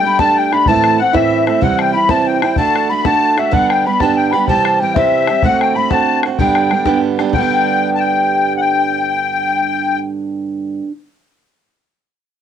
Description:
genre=celtic folk, Celtic jig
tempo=126 BPM (dotted quarters)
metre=6/8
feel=straight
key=G major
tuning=A4 = 441 Hz
part: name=mellow baroque flute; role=melody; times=0.0-10.0 s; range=E5 to B5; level=-16 LUFS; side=equal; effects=cassette tape
part: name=musette accordion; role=second line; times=0.0-10.0 s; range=E5 to B5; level=-18 LUFS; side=left 10 dB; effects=cassette tape
part: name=picked steel-string acoustic guitar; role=accompaniment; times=0.0-10.9 s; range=G2 to G4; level=-17 LUFS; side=right 7 dB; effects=cassette tape
part: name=bodhran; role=percussion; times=0.2-7.5 s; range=none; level=-19 LUFS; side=left 4 dB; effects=none
room=moderate small room reverb, RT60 0.5 s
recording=home recording on cassette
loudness=-12 LUFS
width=side -9 dB against mid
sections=0.0-7.3 A section; 7.3-9.2 B section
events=none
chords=0.0 Gsus2; 0.7 Am; 1.6 C; 2.6 D; 3.5 G; 4.5 C; 5.4 D7; 6.4 G

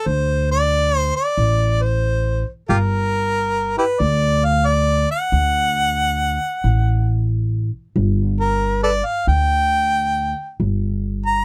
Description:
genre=acoustic country blues, solo or duo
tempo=91 BPM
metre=4/4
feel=swing 67% on 8ths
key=unclear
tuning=A4 = 440 Hz
part: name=warm harmonica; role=melody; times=0.0-11.4 s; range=E4 to Bb5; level=-21 LUFS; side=equal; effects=none
part: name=upright bass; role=bass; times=0.1-11.4 s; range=G1 to D2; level=-21 LUFS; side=equal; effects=none
room=little or no reverb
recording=none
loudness=-19 LUFS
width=mono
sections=0.0-8.0 A section; 8.0-11.4 B section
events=harmonica solo 8.0-11.4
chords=0.0 D5; 2.7 G5; 5.3 D; 8.0 G5

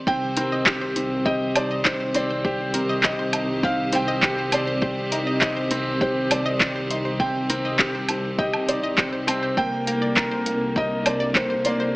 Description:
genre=piano and strings electronica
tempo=101 BPM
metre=4/4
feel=straight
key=C minor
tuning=A4 = 442 Hz
part: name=bright chamber string section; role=sustained chords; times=0.0-12.0 s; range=D3 to C5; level=-31 LUFS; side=equal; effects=none
part: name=dark baby grand piano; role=riff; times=0.0-12.0 s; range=Bb3 to Bb4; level=-26 LUFS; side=equal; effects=none
part: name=felt-muted upright piano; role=melody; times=0.1-12.0 s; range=C5 to G5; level=-27 LUFS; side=equal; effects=none
part: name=analog pluck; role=arpeggios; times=0.1-11.9 s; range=Bb4 to C6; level=-32 LUFS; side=left 1 dB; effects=chorus, sidechain pumping, digital delay
part: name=dark studio double bass section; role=bass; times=0.1-12.0 s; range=C2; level=-31 LUFS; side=equal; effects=sidechain pumping
part: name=electronic kick drum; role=drums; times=0.1-11.5 s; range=none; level=-27 LUFS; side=equal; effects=overdrive
part: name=deep house drum kit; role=drums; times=0.4-11.8 s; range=handclaps, hi-hat, woodblock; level=-22 LUFS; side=equal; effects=overdrive
room=moderate echo chamber reverb, RT60 2.0 s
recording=AM radio sound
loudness=-20 LUFS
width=side -22 dB against mid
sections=0.1-12.0 A section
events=drop 0.1-12.0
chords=0.1 Cmadd9; 9.6 Gm/C

